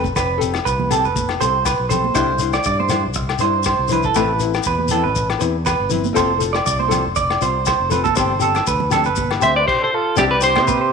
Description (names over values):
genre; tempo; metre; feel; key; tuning
highlife guitar band; 120 BPM; 4/4; swing 53% on 16ths; C major; A4 = 440 Hz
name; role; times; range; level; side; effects
nylon-string guitar; accompaniment; 0.0-10.6 s; E3 to C5; -24 LUFS; left 10 dB; none
clean electric guitar; arpeggios; 0.0-10.9 s; A4 to D5; -19 LUFS; right 6 dB; slapback echo
fingered electric bass; bass; 0.0-10.9 s; F1 to C3; -24 LUFS; equal; none
vintage drum kit; drums; 0.0-10.8 s; crash cymbal, hi-hat, kick drum, rim click; -27 LUFS; left 4 dB; none
congas; percussion; 0.0-10.8 s; none; -28 LUFS; right 10 dB; none
shekere; percussion; 0.0-10.8 s; none; -27 LUFS; left 8 dB; none
agogo bells; percussion; 0.2-10.7 s; none; -28 LUFS; left 13 dB; none
semi-hollow electric guitar; melody; 9.4-10.9 s; G4 to E5; -16 LUFS; left 2 dB; none
breathy trumpet; second line; 9.4-10.9 s; E4 to C5; -24 LUFS; right 8 dB; none
room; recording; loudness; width
moderate echo chamber reverb, RT60 1.4 s, studio reverb; 1960s-style stereo with parts hard left and right; -15 LUFS; side -5 dB against mid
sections
0.0-10.2 A section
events
none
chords
0.0 Fadd9; 2.2 Cadd9; 4.2 Amadd9; 6.2 F; 8.2 Gsus4; 10.2 Cadd9